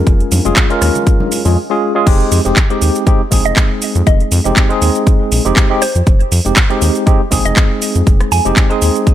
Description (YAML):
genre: deep house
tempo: 120 BPM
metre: 4/4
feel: swing 55% on 16ths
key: F minor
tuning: A4 = 441 Hz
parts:
  - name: mallet-like synth pluck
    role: melody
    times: 0.0-1.5 s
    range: Ab4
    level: -31 LUFS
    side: right 10 dB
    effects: none
  - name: warm analog pad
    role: sustained chords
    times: 0.0-1.5 s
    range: Db4 to Ab5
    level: -31 LUFS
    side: equal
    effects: none
  - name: tine electric piano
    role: stabs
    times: 0.0-9.1 s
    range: Ab3 to Bb4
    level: -16 LUFS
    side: equal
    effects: medium stereo tremolo, sidechain pumping, digital delay
  - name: round analog bass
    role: bass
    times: 0.0-8.9 s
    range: F1 to F2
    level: -14 LUFS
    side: equal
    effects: sidechain pumping
  - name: electronic kick drum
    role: drums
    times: 0.1-9.1 s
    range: none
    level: -11 LUFS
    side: equal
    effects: none
  - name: house drum kit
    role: drums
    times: 0.1-9.1 s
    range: crash cymbal, handclaps, hi-hat, rim click, shaker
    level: -17 LUFS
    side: right 1 dB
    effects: none
  - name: congas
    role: percussion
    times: 0.3-1.3 s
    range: none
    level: -25 LUFS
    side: left 4 dB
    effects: none
  - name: mallet-like synth pluck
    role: melody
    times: 3.5-8.8 s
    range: C5 to Ab5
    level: -21 LUFS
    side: right 2 dB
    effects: chorus, phaser, digital delay
room: digital ambience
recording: none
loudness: -10 LUFS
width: side -12 dB against mid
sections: 0.0-2.1 A section; 2.1-9.1 B section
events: drop 2.1-9.1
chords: 0.0 Db/F; 2.1 Fm9